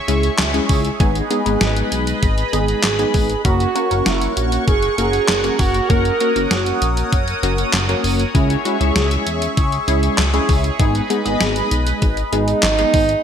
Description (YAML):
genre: synth-pop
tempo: 98 BPM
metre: 4/4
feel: straight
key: F# mixolydian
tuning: A4 = 440 Hz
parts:
  - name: phased analog pad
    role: sustained chords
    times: 0.0-13.2 s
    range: G#4 to D#6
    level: -24 LUFS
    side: equal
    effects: phaser, chorus, tremolo
  - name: funky polysynth comp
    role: accompaniment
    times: 0.1-13.1 s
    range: G#3 to A#4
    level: -21 LUFS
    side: left 1 dB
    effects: chorus
  - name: chorused synth bass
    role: bass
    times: 0.1-13.2 s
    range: F#1 to E2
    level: -21 LUFS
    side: equal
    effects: none
  - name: detuned 8-bit digital drum machine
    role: drums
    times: 0.1-13.2 s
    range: handclaps, hi-hat, kick drum, snare drum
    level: -19 LUFS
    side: equal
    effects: gated reverb
  - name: warm French horn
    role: melody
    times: 2.5-7.1, 12.3-13.2 s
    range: D#4 to A#4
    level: -20 LUFS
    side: right 5 dB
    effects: digital delay
room: moderate plate reverb, RT60 3.0 s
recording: bright 1980s-style digital production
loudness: -15 LUFS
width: side -8 dB against mid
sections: 0.0-13.2 A section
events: none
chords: 0.0 C#m; 1.0 G#m; 3.4 F#; 8.3 C#m; 10.8 G#m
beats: 0.39 | 1.00 1.61 2.22 2.84 | 3.45 4.06 4.67 5.29 | 5.90 6.51 7.12 7.73 | 8.35 8.96 9.57 10.18 | 10.80 11.41 12.02 12.63